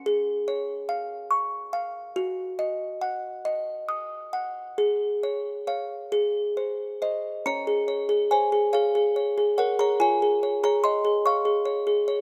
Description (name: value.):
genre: classical, lullaby for music box.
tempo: 46 BPM (dotted quarters).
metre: 6/8.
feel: uneven beats, rubato.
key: Db major.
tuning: A4 = 440 Hz.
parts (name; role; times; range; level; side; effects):
music box; solo; 0.0-12.2 s; Db4 to Eb6; -26 LUFS; equal; none.
room: light reverb.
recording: none.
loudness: -26 LUFS.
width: mono.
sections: 0.0-7.5 A section; 7.5-12.2 B section.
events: none.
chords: 0.0 Db; 2.2 Ebm/Gb; 4.8 Db/Ab; 6.1 Ab; 7.5 Db; 10.0 Db/F.